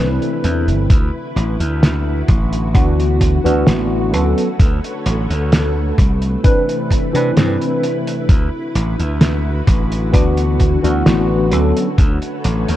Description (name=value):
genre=vaporwave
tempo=65 BPM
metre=4/4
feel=straight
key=D mixolydian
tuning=A4 = 440 Hz
part: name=tine electric piano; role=accompaniment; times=0.0-11.9 s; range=E3 to B4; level=-18 LUFS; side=left 1 dB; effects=medium stereo tremolo, ensemble chorus, tape echo
part: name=soft string machine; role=sustained chords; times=0.0-12.8 s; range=C3 to C#5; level=-24 LUFS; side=left 1 dB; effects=ensemble chorus
part: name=slap bass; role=bass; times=0.0-12.8 s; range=G1 to C3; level=-17 LUFS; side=equal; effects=tube saturation
part: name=cloth-damped thuddy drum kit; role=drums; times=0.2-12.8 s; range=hi-hat, snare drum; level=-18 LUFS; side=equal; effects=none
part: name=electronic kick drum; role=drums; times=0.9-12.2 s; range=none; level=-13 LUFS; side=equal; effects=none
room=light reverb, small room ambience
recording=dark, warm production, cassette tape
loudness=-13 LUFS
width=side -13 dB against mid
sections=0.0-12.8 A section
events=none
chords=0.0 Cmaj9; 0.9 D69; 4.1 Bm9; 6.0 Cmaj9; 8.3 D69; 11.5 Bm9